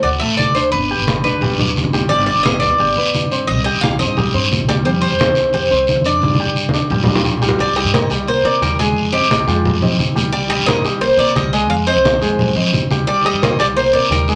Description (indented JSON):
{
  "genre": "latin, Cuban son and guajira",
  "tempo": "175 BPM",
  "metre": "4/4",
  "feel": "straight",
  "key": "C minor",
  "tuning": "A4 = 443 Hz",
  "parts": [
    { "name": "Cuban tres", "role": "melody", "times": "0.0-14.4 s", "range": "G4 to F5", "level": "-20 LUFS", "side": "equal", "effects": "none" },
    { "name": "warm concert grand piano", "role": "arpeggios", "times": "0.0-14.4 s", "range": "G3 to G6", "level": "-23 LUFS", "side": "equal", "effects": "none" },
    { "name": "upright bass", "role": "bass", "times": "0.0-14.4 s", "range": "G1 to F3", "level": "-25 LUFS", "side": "equal", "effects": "none" },
    { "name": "congas", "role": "percussion", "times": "0.0-14.3 s", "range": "none", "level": "-22 LUFS", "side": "equal", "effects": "none" },
    { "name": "guiro", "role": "percussion", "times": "0.0-14.4 s", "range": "none", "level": "-25 LUFS", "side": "equal", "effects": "none" }
  ],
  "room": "wet studio ambience, RT60 0.5 s",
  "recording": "none",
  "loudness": "-16 LUFS",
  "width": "mono",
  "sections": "0.0-7.6 A section; 7.6-14.4 B section",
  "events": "drum fill 6.2-7.6",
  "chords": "0.0 D7; 0.7 G; 3.5 Cm; 4.9 Fsus2; 6.2 G5; 7.6 Cm7; 9.0 Fm9; 10.3 Cm7; 11.7 Fm9; 13.1 Cm7"
}